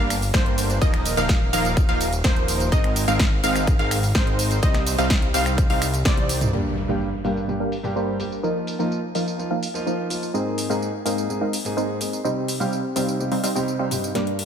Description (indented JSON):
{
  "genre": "EDM, festival progressive house",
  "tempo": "126 BPM",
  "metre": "4/4",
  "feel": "straight",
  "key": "unclear",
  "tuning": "A4 = 439 Hz",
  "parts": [
    { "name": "wide unison pluck", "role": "arpeggios", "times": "0.0-6.5, 14.1-14.4 s", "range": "C5 to F5", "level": "-28 LUFS", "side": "equal", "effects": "sidechain pumping, ping-pong delay" },
    { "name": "supersaw stab", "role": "riff", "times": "0.0-14.4 s", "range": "F3 to G5", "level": "-25 LUFS", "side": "right 1 dB", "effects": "sidechain pumping, low-pass filter, ping-pong delay" },
    { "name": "fat analog bass", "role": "bass", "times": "0.0-6.5 s", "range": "Eb1 to C2", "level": "-25 LUFS", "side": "equal", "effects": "sidechain pumping" },
    { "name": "big-room dance drum kit", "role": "drums", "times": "0.1-14.4 s", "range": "crash cymbal, finger snaps, hi-hat, ride cymbal, snare drum, tambourine, toms", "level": "-28 LUFS", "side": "equal", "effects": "low-pass filter on hats, low-pass filter on perc, low-pass filter on snare, low-pass filter on cymbals, low-pass filter on toms" },
    { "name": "electronic kick drum", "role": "drums", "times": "0.3-6.2 s", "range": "none", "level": "-20 LUFS", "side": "equal", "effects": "none" },
    { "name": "dark concert grand piano", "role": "accompaniment", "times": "6.5-14.4 s", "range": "G2 to Bb4", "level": "-27 LUFS", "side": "equal", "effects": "sidechain pumping, ping-pong delay" },
    { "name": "impact and riser", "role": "sound effects", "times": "6.5-8.4, 14.1-14.4 s", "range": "none", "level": "-32 LUFS", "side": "equal", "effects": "none" }
  ],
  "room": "light reverb, digital ambience",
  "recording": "none",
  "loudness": "-20 LUFS",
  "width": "side -8 dB against mid",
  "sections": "0.0-6.5 A section; 6.5-14.2 B section",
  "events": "drop 0.0-6.5; drum fill 6.1-6.5, 14.2; impact 6.5-8.4; filter sweep on drum 6.5-14.2",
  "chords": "0.0 Gm; 0.8 Ebsus2; 2.7 Abadd9; 4.6 Cm; 6.5 Gm; 8.4 Ebsus2; 10.3 Abadd9; 12.2 Cm"
}